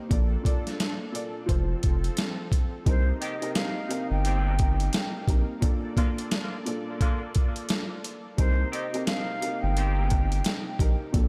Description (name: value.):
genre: hip hop, boom-bap hip-hop.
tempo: 87 BPM.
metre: 4/4.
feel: swing 61% on 16ths.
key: C dorian.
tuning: A4 = 438 Hz.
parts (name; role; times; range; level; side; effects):
dark upright piano; accompaniment; 0.0-11.3 s; Bb2 to D5; -36 LUFS; equal; cassette tape, high-pass filter, low-pass filter.
warm analog pad; sustained chords; 0.0-11.3 s; C3 to D5; -42 LUFS; equal; chorus, tremolo, high-pass filter, low-pass filter.
saturated sub bass; bass; 0.1-11.3 s; F1 to C2; -28 LUFS; equal; none.
boom bap sampler-style drum kit; drums; 0.1-11.3 s; hi-hat, kick drum, snare drum; -29 LUFS; equal; none.
breathy jazz flute; melody; 2.9-10.6 s; C5 to G5; -36 LUFS; equal; high-pass filter, low-pass filter, tape echo.
warm horn section; stabs; 3.2-10.2 s; D3 to G4; -42 LUFS; equal; high-pass filter, low-pass filter, tape echo.
room: light reverb, small room ambience.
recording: none.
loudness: -27 LUFS.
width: mono.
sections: 0.0-2.9 A section; 2.9-11.3 B section.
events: break 5.6-8.4.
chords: 0.1 Bbmaj7; 1.5 F; 2.9 Cm7; 5.6 Bbmaj7; 8.4 Cm7.